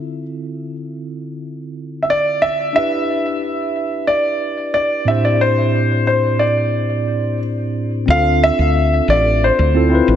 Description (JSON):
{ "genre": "sunset chillout", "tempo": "90 BPM", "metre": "4/4", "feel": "straight", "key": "D dorian", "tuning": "A4 = 440 Hz", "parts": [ { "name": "mellow tine electric piano", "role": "accompaniment", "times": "0.0-10.2 s", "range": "A2 to C5", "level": "-20 LUFS", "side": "equal", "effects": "auto-pan" }, { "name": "warm concert grand piano", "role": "melody", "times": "2.0-10.1 s", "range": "C5 to F5", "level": "-17 LUFS", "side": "equal", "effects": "vintage 12-bit sampler grit, tape echo" }, { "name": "woody fretless electric bass", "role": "bass", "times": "8.1-10.2 s", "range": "A1 to D2", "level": "-16 LUFS", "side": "equal", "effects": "none" } ], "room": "moderate plate reverb, RT60 2.8 s", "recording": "none", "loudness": "-14 LUFS", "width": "side -10 dB against mid", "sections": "0.0-8.1 A section; 8.1-10.2 B section", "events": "none", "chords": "0.0 Dm9; 2.8 Em7; 5.1 Am7; 8.1 Dm9" }